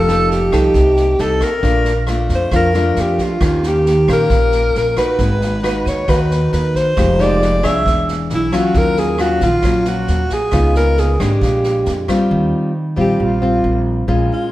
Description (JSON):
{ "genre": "bossa nova", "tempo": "135 BPM", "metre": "4/4", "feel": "straight", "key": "unclear", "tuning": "A4 = 440 Hz", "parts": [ { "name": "breathy alto saxophone", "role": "melody", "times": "0.0-14.5 s", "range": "E4 to E5", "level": "-17 LUFS", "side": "equal", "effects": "none" }, { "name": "nylon-string guitar", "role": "accompaniment", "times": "0.0-14.5 s", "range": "A#2 to C#5", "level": "-18 LUFS", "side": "left 1 dB", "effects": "none" }, { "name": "upright bass", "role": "bass", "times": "0.0-14.3 s", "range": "E1 to E#2", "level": "-18 LUFS", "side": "equal", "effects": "none" }, { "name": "swinging big-band drum kit", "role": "drums", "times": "0.1-12.2 s", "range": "kick drum, rim click, snare drum", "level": "-22 LUFS", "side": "equal", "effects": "none" } ], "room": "wet echo chamber reverb, RT60 1.5 s", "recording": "heard from further back in the room", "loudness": "-13 LUFS", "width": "side -15 dB against mid", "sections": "0.0-12.3 A section; 12.3-14.5 B section", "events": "alto saxophone solo 12.3-14.5", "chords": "0.0 F9; 1.6 A#maj7; 3.4 D#7; 5.2 G#m7; 7.0 Fm9; 7.9 E13; 8.7 D#m9; 10.5 C#9; 11.4 A#13; 12.3 Eb69" }